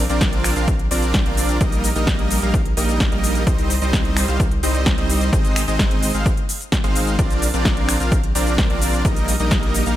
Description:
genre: EDM, festival progressive house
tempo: 129 BPM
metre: 4/4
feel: straight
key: unclear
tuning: A4 = 441 Hz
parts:
  - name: dense compressed supersaw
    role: riff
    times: 0.0-10.0 s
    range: G3 to F5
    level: -22 LUFS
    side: right 1 dB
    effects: sidechain pumping, ping-pong delay
  - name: saturated sub bass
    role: bass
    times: 0.0-10.0 s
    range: Ab1 to C2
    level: -22 LUFS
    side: equal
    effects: sidechain pumping
  - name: big-room dance drum kit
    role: drums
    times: 0.1-10.0 s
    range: finger snaps, hi-hat, shaker, snare drum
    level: -24 LUFS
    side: equal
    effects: overdrive
  - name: electronic kick drum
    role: drums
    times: 0.2-9.6 s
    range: none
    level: -20 LUFS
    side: equal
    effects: overdrive
room: digital ambience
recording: none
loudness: -16 LUFS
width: side -13 dB against mid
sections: 0.0-10.0 A section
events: none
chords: 0.0 Bbadd9; 1.6 Eb/Bb; 3.5 Cm; 5.3 Ab; 7.2 Bbadd9; 9.1 Eb/Bb

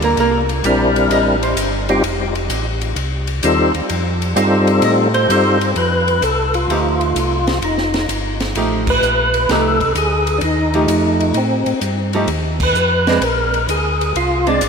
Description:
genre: soul jazz organ trio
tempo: 129 BPM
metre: 4/4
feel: swing 68% on 8ths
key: F mixolydian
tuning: A4 = 442 Hz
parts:
  - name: archtop guitar, miked and amplified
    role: accompaniment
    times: 0.0-2.0, 4.8-14.6 s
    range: F3 to Eb5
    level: -21 LUFS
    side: right 2 dB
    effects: wide subtle chorus
  - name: mellow tonewheel organ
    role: bass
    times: 0.0-14.7 s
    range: F1 to A2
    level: -20 LUFS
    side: equal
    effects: slow rotary speaker
  - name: compact cocktail drum kit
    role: drums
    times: 0.0-14.7 s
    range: crash cymbal, hi-hat, kick drum, ride cymbal, snare drum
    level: -24 LUFS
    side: left 2 dB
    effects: none
  - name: percussive tonewheel organ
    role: melody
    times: 0.6-14.7 s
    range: G3 to D5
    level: -16 LUFS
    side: left 1 dB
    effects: slow rotary speaker, overdrive, chorus vibrato, ping-pong delay
room: wet huge ambient reverb, RT60 3.9 s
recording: dreamy mix soaked in reverb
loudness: -14 LUFS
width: side -6 dB against mid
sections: 0.0-5.8 A section; 5.8-14.7 B section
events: hollow-body jazz guitar solo 0.0-5.8; band accent 8.8, 12.5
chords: 0.2 C9; 2.0 F9; 13.2 Bb9

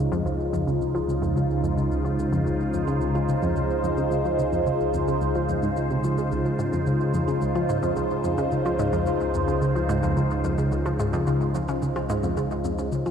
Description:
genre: ambient, sequencer-driven space music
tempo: 109 BPM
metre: 4/4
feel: straight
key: Db major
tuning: A4 = 440 Hz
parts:
  - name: phased analog pad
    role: sustained chords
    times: 0.0-13.1 s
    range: Db3 to C5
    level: -24 LUFS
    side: equal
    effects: phaser, chorus
  - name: analog pluck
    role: riff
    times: 0.0-13.1 s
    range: Db2 to F3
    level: -27 LUFS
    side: equal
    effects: chorus, tape echo
  - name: analog drone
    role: bass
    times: 0.0-13.1 s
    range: Db2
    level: -32 LUFS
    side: equal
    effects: chorus, phaser
  - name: shaker and percussion blips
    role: percussion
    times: 0.1-13.1 s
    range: none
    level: -51 LUFS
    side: left 3 dB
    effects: overdrive, tape echo
room: wet lush hall reverb, RT60 2.6 s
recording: dreamy mix soaked in reverb, cassette tape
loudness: -22 LUFS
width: side -8 dB against mid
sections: 0.0-13.1 A section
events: fade-in on drum 0.0-13.1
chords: 0.0 Dbmaj7

